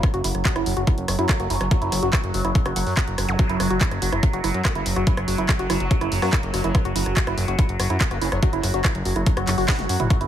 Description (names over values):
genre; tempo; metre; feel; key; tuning
psychedelic trance; 143 BPM; 4/4; straight; F# major; A4 = 440 Hz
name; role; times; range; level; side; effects
formant-sweep wobble bass; second line; 0.0-2.1, 4.6-8.8 s; F#3 to C#4; -38 LUFS; left 1 dB; none
overtone-sweeping drone; sustained chords; 0.0-10.3 s; F#3; -28 LUFS; right 2 dB; chorus, built-in reverb, phaser, sidechain pumping
drum and bass drum kit; drums; 0.0-10.3 s; handclaps, hi-hat, rim click, snare drum, toms; -27 LUFS; equal; small room ambience
electronic kick drum; drums; 0.0-10.2 s; none; -20 LUFS; equal; small room ambience
woody wave-folded pluck; riff; 0.1-10.3 s; E4 to F#5; -28 LUFS; moving between left 2 dB and right 5 dB; chorus, auto-pan, sidechain pumping, dub echo
fat analog bass; bass; 0.1-10.3 s; F#1 to F#2; -25 LUFS; equal; none
zap and swell; sound effects; 3.3-3.4, 9.4-10.1 s; none; -32 LUFS; equal; none
room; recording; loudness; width
light reverb; none; -19 LUFS; side -10 dB against mid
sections
0.0-10.3 A section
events
swell 9.4-10.1; drum fill 9.7-10.1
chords
none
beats
| 0.03 0.45 0.87 1.29 | 1.71 2.13 2.55 2.97 | 3.39 3.81 4.23 4.65 | 5.07 5.49 5.91 6.33 | 6.75 7.17 7.59 8.01 | 8.43 8.85 9.27 9.68 | 10.10